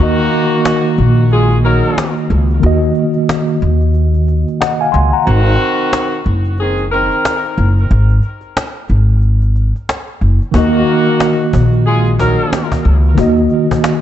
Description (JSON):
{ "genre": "hip hop, boom-bap hip-hop", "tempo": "91 BPM", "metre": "4/4", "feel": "swing 58% on 16ths", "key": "Eb dorian", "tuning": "A4 = 440 Hz", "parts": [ { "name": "mellow tine electric piano", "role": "accompaniment", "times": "0.0-5.3, 10.5-14.0 s", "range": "Eb3 to C6", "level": "-15 LUFS", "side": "equal", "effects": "medium stereo tremolo, cassette tape, high-pass filter, low-pass filter" }, { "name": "warm horn section", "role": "stabs", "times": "0.0-12.7 s", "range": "Eb3 to Bb4", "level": "-17 LUFS", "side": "equal", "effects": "high-pass filter, low-pass filter, ping-pong delay" }, { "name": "upright bass", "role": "bass", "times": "0.0-13.5 s", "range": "Gb1 to Eb2", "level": "-12 LUFS", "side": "equal", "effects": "none" }, { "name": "cajon", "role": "drums", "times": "0.2-14.0 s", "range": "none", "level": "-20 LUFS", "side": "equal", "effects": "none" } ], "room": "light reverb, small room ambience", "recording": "nothing above 8.0 kHz", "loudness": "-11 LUFS", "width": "side -11 dB against mid", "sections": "0.0-14.0 A section", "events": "break 0.0-10.5", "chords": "0.0 Ebm; 5.3 Ab; 10.5 Ebm" }